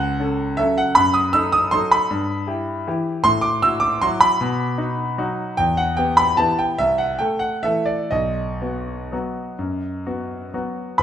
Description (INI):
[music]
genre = classical, piano waltz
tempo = 115-168 BPM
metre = 3/4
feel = rubato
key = unclear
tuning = A4 = 441 Hz
[part]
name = clear grand piano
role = solo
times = 0.0-11.0 s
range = B1 to E6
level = -18 LUFS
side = equal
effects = none
[sound]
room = wet recital hall reverb, RT60 1.5 s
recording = recorded in a church or concert hall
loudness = -18 LUFS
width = side -10 dB against mid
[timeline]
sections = 0.0-11.0 A section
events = none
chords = 0.0 F#m; 1.0 F#dim7; 2.1 Em/G; 3.2 Am69; 4.4 B; 5.6 Em; 6.8 Am/C; 8.1 B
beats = 0.20 0.59 | 0.97 1.34 1.73 | 2.11 2.47 2.87 | 3.25 3.62 4.01 | 4.41 4.78 5.17 | 5.58 5.96 6.37 | 6.78 7.20 7.64 | 8.11 8.60 9.12 | 9.60 10.06 10.53 | 10.99